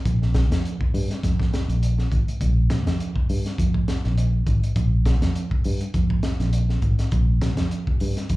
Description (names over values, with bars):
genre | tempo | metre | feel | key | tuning
afrobeat | 102 BPM | 4/4 | swing 54% on 16ths | unclear | A4 = 442 Hz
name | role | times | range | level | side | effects
fingered electric bass | bass | 0.1-8.4 s | Ab1 to G2 | -21 LUFS | equal | none
crunchy breakbeat drum kit | drums | 0.1-8.4 s | hi-hat, kick drum, snare drum | -24 LUFS | equal | none
room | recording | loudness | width
little or no reverb | live gig heard through the venue's PA, club reverb | -20 LUFS | side -18 dB against mid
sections
0.0-8.4 A section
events
none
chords
none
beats
| 0.05 0.64 1.23 1.82 | 2.41 3.00 3.59 4.18 | 4.77 5.36 5.95 6.54 | 7.13 7.72 8.31